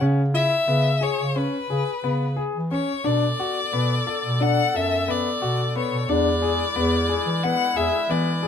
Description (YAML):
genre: contemporary instrumental, chamber music in an uneven meter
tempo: 178 BPM (eighths)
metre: 9/8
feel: straight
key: unclear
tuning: A4 = 442 Hz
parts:
  - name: clear grand piano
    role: arpeggios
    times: 0.0-8.5 s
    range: B3 to A4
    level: -26 LUFS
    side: left 3 dB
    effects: none
  - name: dark bass clarinet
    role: bass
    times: 0.0-8.5 s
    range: E2 to E3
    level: -24 LUFS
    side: equal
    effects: none
  - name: clear violin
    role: melody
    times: 0.3-8.5 s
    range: B4 to F#5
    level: -24 LUFS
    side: left 4 dB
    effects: none
  - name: warm woodwind section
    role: sustained chords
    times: 3.1-8.5 s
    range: D3 to A4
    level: -33 LUFS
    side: right 2 dB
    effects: none
room: moderate spring reverb, RT60 1.5 s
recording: minimal, uncompressed stereo recording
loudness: -20 LUFS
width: side -8 dB against mid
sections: 0.0-8.5 A section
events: none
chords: 0.0 C#m7; 3.1 Bm7; 6.1 E7